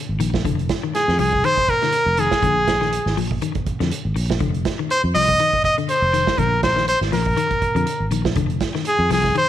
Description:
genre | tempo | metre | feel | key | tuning
afrobeat | 121 BPM | 4/4 | swing 56% on 16ths | F dorian | A4 = 440 Hz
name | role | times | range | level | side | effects
clean electric guitar | arpeggios | 0.0-9.5 s | D3 to F3 | -26 LUFS | left 9 dB | slapback echo
fingered electric bass | bass | 0.1-9.3 s | F1 to F2 | -22 LUFS | equal | none
vintage drum kit | drums | 0.2-9.5 s | hi-hat, kick drum, snare drum | -25 LUFS | right 4 dB | none
brilliant trumpet | melody | 1.0-9.5 s | Ab4 to Eb5 | -18 LUFS | equal | none
room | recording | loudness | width
light reverb, studio reverb | 1960s-style stereo | -17 LUFS | side -11 dB against mid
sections
0.0-9.5 A section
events
none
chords
0.4 F5; 2.4 Bb7sus4; 4.4 F5; 6.4 Bbsus4; 8.4 F5

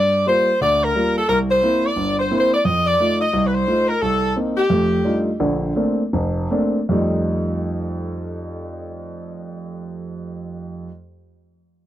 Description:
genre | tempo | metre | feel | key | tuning
jazz | 150-176 BPM | 4/4 | swing 64% on 8ths | F mixolydian | A4 = 438 Hz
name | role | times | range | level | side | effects
bright saxophone section | melody | 0.0-5.2 s | G4 to Eb5 | -18 LUFS | left 1 dB | none
warm grand piano | accompaniment | 0.0-10.9 s | F1 to F4 | -21 LUFS | right 1 dB | none
room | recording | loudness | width
little or no reverb | dry, close 1970s-style studio recording | -17 LUFS | side -12 dB against mid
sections
0.0-5.4 A section; 5.4-6.9 B section; 6.9-10.1 C section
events
slowing down 4.0-6.9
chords
0.0 Gm7; 1.3 C7; 2.6 F7; 4.0 Cm7; 4.7 F13; 5.4 Bbmaj9; 6.9 F9

